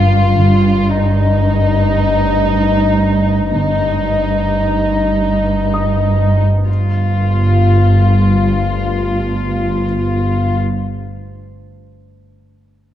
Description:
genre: cinematic, suspense film score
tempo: free time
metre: none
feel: none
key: unclear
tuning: A4 = 438 Hz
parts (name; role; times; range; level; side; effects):
- muted chamber violin section; melody; 0.0-10.6 s; Eb4 to F4; -18 LUFS; left 2 dB; none
- muted studio cello section; bass; 0.0-10.6 s; G2; -16 LUFS; right 1 dB; none
- metallic inharmonic drone; drone; 0.0-10.6 s; G1; -20 LUFS; left 1 dB; chorus, built-in reverb
- dark concert grand piano; texture; 0.0-6.7 s; D6 to Eb6; -30 LUFS; left 2 dB; none
- muted symphonic double bass section; bass; 0.4-10.6 s; G1; -17 LUFS; right 1 dB; none
room: moderate scoring stage reverb, RT60 2.0 s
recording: dark, warm production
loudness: -12 LUFS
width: side -11 dB against mid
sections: 0.0-6.7 A section; 6.7-9.8 B section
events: none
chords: 0.4 Eb/G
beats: free time

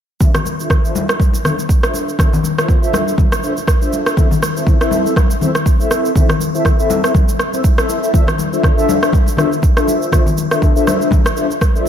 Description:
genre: afro house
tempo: 121 BPM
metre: 4/4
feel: swing 56% on 16ths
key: D minor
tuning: A4 = 439 Hz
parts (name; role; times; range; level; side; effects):
- mellow synth brass; stabs; 0.2-11.9 s; C4 to E5; -18 LUFS; left 2 dB; chorus, vintage 12-bit sampler grit, sidechain pumping, ping-pong delay
- electronic kick drum; drums; 0.2-11.7 s; none; -13 LUFS; right 1 dB; small room ambience
- electronic shaker and rim click; drums; 0.2-11.8 s; none; -20 LUFS; right 1 dB; small room ambience
- congas; percussion; 0.2-11.9 s; none; -21 LUFS; left 4 dB; none
room: light reverb, digital ambience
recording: none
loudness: -12 LUFS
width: side -9 dB against mid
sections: 0.2-11.9 A section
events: none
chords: 0.2 Dm9; 4.2 Am; 8.1 Dm9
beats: | 0.21 0.70 1.20 1.70 | 2.19 2.69 3.18 3.68 | 4.17 4.67 5.17 5.66 | 6.16 6.65 7.15 7.64 | 8.14 8.64 9.13 9.63 | 10.12 10.62 11.12 11.61

